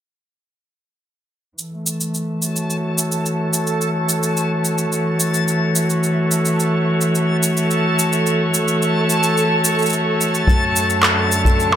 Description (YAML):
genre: folktronica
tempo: 108 BPM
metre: 4/4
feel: straight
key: F# minor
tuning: A4 = 439 Hz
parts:
  - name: rich string quartet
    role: sustained chords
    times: 1.6-11.8 s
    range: F#2 to C#5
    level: -18 LUFS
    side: equal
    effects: low-pass filter
  - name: electronic shaker, handclaps and percussion blips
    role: drums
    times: 1.6-11.8 s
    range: none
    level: -20 LUFS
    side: right 1 dB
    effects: none
  - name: backwards swelling texture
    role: texture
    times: 2.5-11.8 s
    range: A4 to A5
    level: -22 LUFS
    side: right 1 dB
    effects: built-in reverb, plate reverb
  - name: kick drum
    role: drums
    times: 10.5-11.6 s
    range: none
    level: -16 LUFS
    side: equal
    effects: none
room: moderate studio ambience, RT60 0.5 s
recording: none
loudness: -16 LUFS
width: side -10 dB against mid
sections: 1.6-11.8 A section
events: filter sweep on string quartet 1.6-11.8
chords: 1.6 F#m7; 10.5 Dmaj7/F#